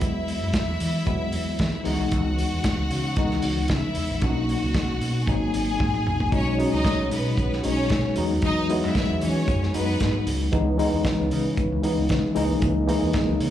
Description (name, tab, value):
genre	disco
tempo	114 BPM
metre	4/4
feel	straight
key	C# dorian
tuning	A4 = 438 Hz
part	bright studio string section	second line	0.0-10.2 s	B3 to G#5	-30 LUFS	left 1 dB	slapback echo
part	tine electric piano	accompaniment	0.0-13.5 s	E3 to E4	-25 LUFS	left 2 dB	overdrive, fast stereo tremolo, slapback echo
part	overdriven fingered electric bass	bass	0.0-13.5 s	G#1 to E3	-27 LUFS	equal	none
part	warm soul drum kit	drums	0.0-13.5 s	hi-hat, kick drum, snare drum, toms	-27 LUFS	equal	none
part	mellow French horn section	sustained chords	6.3-13.5 s	C#3 to D#5	-34 LUFS	right 2 dB	none
room	light reverb, small room ambience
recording	live gig heard through the venue's PA, club reverb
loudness	-21 LUFS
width	side -11 dB against mid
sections	0.0-6.3 A section; 6.3-13.5 B section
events	drum fill 5.8-6.3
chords	0.0 Eadd9; 1.9 C#m7; 4.2 Bmaj7; 5.3 G#7; 6.3 B69; 8.2 Emaj9; 10.5 C#m9; 12.4 C#m69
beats	| 0.02 0.54 1.07 1.59 | 2.12 2.65 3.17 3.70 | 4.23 4.75 5.28 5.80 | 6.33 6.85 7.38 7.90 | 8.43 8.95 9.48 10.00 | 10.53 11.05 11.57 12.10 | 12.62 13.15